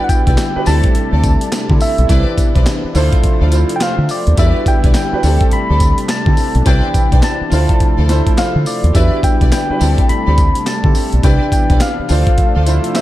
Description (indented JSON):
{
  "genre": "R&B, new jack swing",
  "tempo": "105 BPM",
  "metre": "4/4",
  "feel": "swing 62% on 16ths",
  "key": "unclear",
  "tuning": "A4 = 443 Hz",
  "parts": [
    { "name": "soft struck synth lead", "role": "melody", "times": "0.0-13.0 s", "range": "D5 to B5", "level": "-20 LUFS", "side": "equal", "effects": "chorus, analog delay" },
    { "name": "warm concert grand piano", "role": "accompaniment", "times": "0.0-13.0 s", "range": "C4 to C5", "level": "-21 LUFS", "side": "right 1 dB", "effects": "lush chorus" },
    { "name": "brassy analog pad", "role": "sustained chords", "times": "0.0-13.0 s", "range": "C3 to E4", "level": "-23 LUFS", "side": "left 1 dB", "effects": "chorus" },
    { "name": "breakbeat sampler-style drum kit", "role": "drums", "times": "0.1-13.0 s", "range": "handclaps, hi-hat, kick drum, snare drum, tambourine", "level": "-15 LUFS", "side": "equal", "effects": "none" },
    { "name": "warm studio string section", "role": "stabs", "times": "0.3-12.7 s", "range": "E4 to D5", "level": "-26 LUFS", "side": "left 2 dB", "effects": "analog delay" },
    { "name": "deep dub fingered electric bass", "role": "bass", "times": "0.3-12.8 s", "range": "B1 to D3", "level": "-13 LUFS", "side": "equal", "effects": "none" }
  ],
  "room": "light reverb, digital ambience",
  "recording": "none",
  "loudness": "-11 LUFS",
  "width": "side -15 dB against mid",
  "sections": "0.0-13.0 A section",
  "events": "none",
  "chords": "0.0 Em7; 0.7 D7sus4; 2.1 Cmaj9; 2.9 Dm7; 4.4 Em7; 5.2 D7sus4; 6.7 Cmaj9; 7.5 Dm7; 8.9 Em7; 9.8 D7sus4; 11.2 Cmaj9; 12.1 Dm7"
}